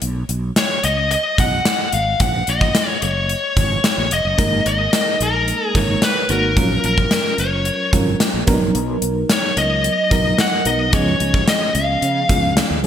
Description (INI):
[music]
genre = 1980s-style pop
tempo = 110 BPM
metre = 4/4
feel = straight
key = unclear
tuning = A4 = 439 Hz
[part]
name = sustaining fretless electric bass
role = bass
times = 0.0-12.9 s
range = E#1 to C#3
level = -22 LUFS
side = equal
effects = ensemble chorus
[part]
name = gated 80s drum kit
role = drums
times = 0.0-12.9 s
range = hi-hat, kick drum, snare drum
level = -18 LUFS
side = equal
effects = gated reverb
[part]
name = smooth overdriven lead guitar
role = melody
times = 0.6-12.5 s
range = A#4 to F#5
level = -19 LUFS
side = left 2 dB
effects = none
[part]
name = FM electric piano with tremolo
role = accompaniment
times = 4.4-12.9 s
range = E#3 to A#4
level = -22 LUFS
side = right 3 dB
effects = none
[sound]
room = moderate lush hall reverb, RT60 2.2 s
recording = bright 1980s-style digital production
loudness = -15 LUFS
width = side -9 dB against mid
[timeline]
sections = 0.0-12.9 A section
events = none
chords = 0.0 B5; 2.2 D#m7; 4.4 G#sus2; 6.6 F#maj7; 8.5 Bmaj7; 10.9 C#7